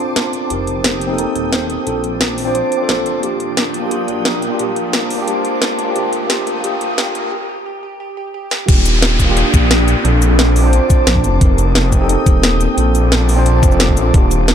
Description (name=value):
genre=liquid drum and bass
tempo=176 BPM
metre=4/4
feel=straight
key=Bb major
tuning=A4 = 442 Hz
part: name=tine electric piano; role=accompaniment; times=0.0-14.5 s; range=Bb3 to C5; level=-19 LUFS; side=equal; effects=fast stereo tremolo, dub echo
part: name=glassy FM pad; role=sustained chords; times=0.0-14.5 s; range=Bb3 to Eb6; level=-22 LUFS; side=left 1 dB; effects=ensemble chorus, built-in reverb, sidechain pumping
part: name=riser and downlifter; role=sound effects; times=0.1-11.4 s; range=none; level=-25 LUFS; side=equal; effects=none
part: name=harp-like synth pluck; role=arpeggios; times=0.2-8.7 s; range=G4 to C5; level=-28 LUFS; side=right 3 dB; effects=chorus, dub echo
part: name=drum and bass drum kit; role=drums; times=0.2-14.5 s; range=crash cymbal, hi-hat, shaker, snare drum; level=-19 LUFS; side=equal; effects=none
part: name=swelling detuned saw bass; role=bass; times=0.5-14.5 s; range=Eb1 to Bb1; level=-17 LUFS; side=equal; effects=tube saturation
part: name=electronic kick drum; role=drums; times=8.7-14.2 s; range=none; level=-13 LUFS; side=equal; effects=none
room=light reverb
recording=dark, warm production, high-pass filter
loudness=-12 LUFS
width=side -9 dB against mid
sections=0.0-8.7 A section; 8.7-14.5 B section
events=build-up 0.0-8.7; filter sweep on synth pluck 0.0-8.7; riser 0.1-7.3; break 7.3-8.7; drum fill 8.5; drop 8.7-14.5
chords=0.0 Bbmaj9; 0.5 F9sus4; 1.9 Bbmaj9; 3.2 Ebmaj7; 4.6 Bbmaj9; 6.0 F9sus4; 7.3 N.C.; 8.7 Ebmaj7; 10.0 Bbmaj9; 11.4 F9sus4; 12.8 Bbmaj9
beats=0.16 | 0.50 0.84 1.19 1.53 | 1.87 2.21 2.55 2.89 | 3.23 3.57 3.91 4.25 | 4.59 4.94 5.28 5.62 | 5.96 6.30 6.64 6.98 | 7.32 7.66 8.00 8.35 | 8.69 9.03 9.37 9.71 | 10.05 10.39 10.73 11.07 | 11.41 11.75 12.10 12.44 | 12.78 13.12 13.46 13.80 | 14.14 14.48